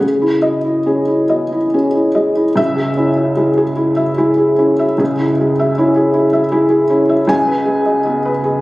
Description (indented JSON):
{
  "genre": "neoclassical minimalist piano",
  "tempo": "46-53 BPM (dotted quarters)",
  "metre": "6/8",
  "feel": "rubato",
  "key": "C# minor",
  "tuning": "A4 = 441 Hz",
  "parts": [
    { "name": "felt-muted upright piano", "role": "solo", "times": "0.0-8.6 s", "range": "C#2 to G#5", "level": "-12 LUFS", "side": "equal", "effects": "none" }
  ],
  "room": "moderate recital hall reverb, RT60 1.4 s",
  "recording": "recorded on a phone in the room, studio reverb, compression",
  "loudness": "-12 LUFS",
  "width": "side -18 dB against mid",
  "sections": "0.0-2.6 A section; 2.6-8.6 B section",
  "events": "none",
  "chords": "0.0 C#madd9; 2.6 C#m; 7.3 G#m/C#"
}